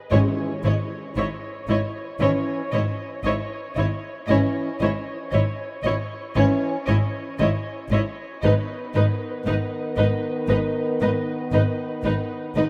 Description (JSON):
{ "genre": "cinematic, suspense film score", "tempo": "58 BPM", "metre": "4/4", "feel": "straight", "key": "unclear", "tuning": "A4 = 440 Hz", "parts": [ { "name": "dark studio violin section", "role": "melody", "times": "0.1-12.6 s", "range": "D#5", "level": "-35 LUFS", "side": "equal", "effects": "none" }, { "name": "dark studio violin section", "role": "second line", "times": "0.1-12.6 s", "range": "B4 to C#5", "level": "-31 LUFS", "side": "equal", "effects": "none" }, { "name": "warm studio viola section", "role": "accompaniment", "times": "0.1-12.7 s", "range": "D#4 to E4", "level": "-34 LUFS", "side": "equal", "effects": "none" }, { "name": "dark French horn section", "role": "sustained chords", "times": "0.1-12.7 s", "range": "D#3 to C#4", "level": "-30 LUFS", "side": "equal", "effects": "none" }, { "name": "dark studio cello section", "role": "bass", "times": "0.1-12.6 s", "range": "G#2", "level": "-28 LUFS", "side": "equal", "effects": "none" }, { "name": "warm studio double bass section", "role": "bass", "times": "0.1-12.6 s", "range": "G#1", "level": "-28 LUFS", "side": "equal", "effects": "none" }, { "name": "timpani", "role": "percussion", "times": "0.1-1.6 s", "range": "G#2", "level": "-32 LUFS", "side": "equal", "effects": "none" } ], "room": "wet cathedral reverb, RT60 5.7 s", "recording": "in a vast, echoing space", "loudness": "-24 LUFS", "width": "mono", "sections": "0.0-12.7 A section", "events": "none", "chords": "0.1 C#m/G#; 8.4 G#m" }